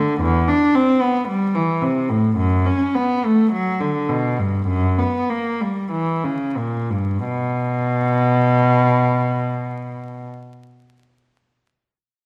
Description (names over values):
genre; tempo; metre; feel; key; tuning
classical, baroque-style suite movement for unaccompanied cello; 44-58 BPM; 4/4; rubato; unclear; A4 = 439 Hz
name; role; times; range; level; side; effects
rich cello; solo; 0.0-10.3 s; E2 to D4; -20 LUFS; equal; none
room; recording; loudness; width
wet stone room reverb, RT60 1.2 s; heard from further back in the room, vinyl crackle; -19 LUFS; mono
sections
0.0-7.3 A section; 7.3-12.3 B section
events
slowing down 0.0-7.3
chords
none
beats
0.20 1.26 | 2.37 3.51 4.68 5.93 | 7.27 8.60 9.92